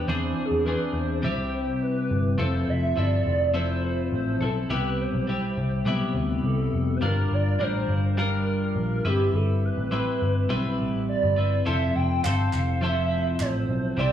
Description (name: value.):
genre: indie pop, bedroom pop.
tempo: 104 BPM.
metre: 4/4.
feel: straight.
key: C major.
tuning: A4 = 440 Hz.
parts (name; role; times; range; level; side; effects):
hollow clarinet-like synth lead; melody; 0.0-14.1 s; G4 to G5; -29 LUFS; right 2 dB; ensemble chorus, analog delay.
twelve-string electric guitar; accompaniment; 0.0-14.1 s; C3 to C5; -26 LUFS; left 2 dB; lush chorus, warbly pitch drift.
vintage muted picked electric bass; bass; 0.0-14.1 s; F1 to E2; -26 LUFS; equal; transformer saturation.
group handclap; percussion; 12.2-13.5 s; none; -36 LUFS; right 4 dB; none.
room: digital ambience.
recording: dry, gritty hardware recording, small room reverb.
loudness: -22 LUFS.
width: side -10 dB against mid.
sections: 0.0-2.4 A section; 2.4-14.1 B section.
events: none.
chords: 0.1 E7b13; 1.2 Cmaj7; 2.4 Fmaj7; 4.7 Cmaj7; 7.0 Gm7; 9.0 Cmaj7/G; 11.7 Fmaj7.